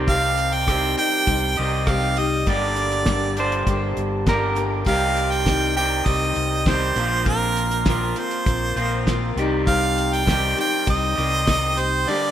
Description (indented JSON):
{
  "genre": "folk rock and heartland rock",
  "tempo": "100 BPM",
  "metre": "4/4",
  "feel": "straight",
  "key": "C minor",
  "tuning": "A4 = 440 Hz",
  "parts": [
    { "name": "picked steel-string acoustic guitar", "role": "accompaniment", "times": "0.0-12.3 s", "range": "G2 to Bb4", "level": "-28 LUFS", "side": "left 5 dB", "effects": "none" },
    { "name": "electric guitar through a small old amp", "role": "riff", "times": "0.0-12.3 s", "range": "G2 to G4", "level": "-26 LUFS", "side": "right 2 dB", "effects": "none" },
    { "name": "fingered electric bass", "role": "bass", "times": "0.0-12.0 s", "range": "G1 to C2", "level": "-25 LUFS", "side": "equal", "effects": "none" },
    { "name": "clear harmonica", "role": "melody", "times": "0.1-12.3 s", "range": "Bb4 to G5", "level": "-22 LUFS", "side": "right 2 dB", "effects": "slapback echo" },
    { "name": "damped 70s drum kit", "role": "drums", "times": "0.1-11.9 s", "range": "hi-hat, kick drum, rim click, snare drum", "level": "-23 LUFS", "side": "equal", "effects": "none" },
    { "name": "clean lap steel guitar", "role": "second line", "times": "3.4-4.7 s", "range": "Bb4 to C5", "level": "-26 LUFS", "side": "right 1 dB", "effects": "none" }
  ],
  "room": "light reverb, small room ambience",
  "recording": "rough home demo mix",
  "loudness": "-18 LUFS",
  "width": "side -10 dB against mid",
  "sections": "0.0-12.3 A section",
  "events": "none",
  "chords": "0.0 Cm; 2.5 Gm; 4.9 Cm; 7.0 Bbsus2; 9.4 Cm"
}